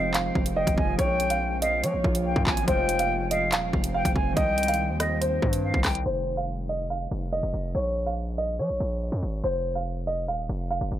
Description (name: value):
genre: hip hop, drill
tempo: 142 BPM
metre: 4/4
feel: half-time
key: unclear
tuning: A4 = 440 Hz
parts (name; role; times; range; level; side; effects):
- dark concert grand piano; melody; 0.0-11.0 s; C5 to F5; -28 LUFS; right 1 dB; none
- concert flute; second line; 0.0-6.0 s; Eb5 to Ab5; -30 LUFS; left 3 dB; tape echo
- concert harp; accompaniment; 0.0-7.4 s; Eb3 to F4; -33 LUFS; equal; none
- ethereal airy pad; sustained chords; 0.0-6.0 s; G3 to Db5; -36 LUFS; right 1 dB; ensemble chorus, built-in reverb
- distorted 808-style bass; bass; 0.0-11.0 s; Eb1 to F3; -30 LUFS; equal; distortion
- drill drum kit; drums; 0.1-6.0 s; handclaps, hi-hat, kick drum, rim click; -27 LUFS; equal; none
room: studio reverb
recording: low-pass filter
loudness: -23 LUFS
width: side -12 dB against mid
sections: 0.0-6.1 A section; 6.1-11.0 B section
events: none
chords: 0.0 Fm; 1.0 Bbm; 2.7 Fm; 4.4 Cm; 6.1 Cmadd11/F; 7.7 Bbm; 9.4 Ebsus2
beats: 0.14 0.56 | 0.99 1.41 1.83 2.25 | 2.68 3.10 3.52 3.94 | 4.37 4.79 5.21 5.63 | 6.06 6.48 6.90 7.33 | 7.75 8.17 8.59 9.02 | 9.44 9.86 10.28 10.71